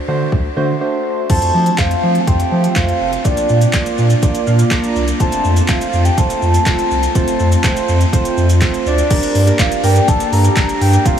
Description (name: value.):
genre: dance-pop.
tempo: 123 BPM.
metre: 4/4.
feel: straight.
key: unclear.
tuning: A4 = 439 Hz.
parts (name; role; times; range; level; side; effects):
soft electric-piano-like synth keys; accompaniment; 0.1-11.2 s; A3 to Bb5; -20 LUFS; right 3 dB; chorus, sidechain pumping.
round analog bass; bass; 0.1-11.2 s; F1 to F3; -16 LUFS; equal; sidechain pumping.
smooth R&B drum kit; drums; 0.3-11.2 s; crash cymbal, handclaps, hi-hat, kick drum, shaker, snare drum; -18 LUFS; equal; overdrive.
soft octave-layered synth lead; melody; 1.3-11.2 s; D5 to Bb5; -19 LUFS; left 1 dB; chorus, phaser, analog delay.
airy breathy pad; sustained chords; 1.3-11.2 s; F3 to A4; -23 LUFS; equal; chorus, sidechain pumping.
room: moderate huge ambient reverb, RT60 8.0 s.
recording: dreamy mix soaked in reverb.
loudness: -12 LUFS.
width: side -9 dB against mid.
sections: 0.0-1.3 A section; 1.3-9.1 B section; 9.1-11.2 C section.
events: break 0.8-1.3; synth keys fill 4.2-5.2.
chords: 0.0 D7; 1.3 F; 3.2 Bb; 5.2 F; 9.1 Gm.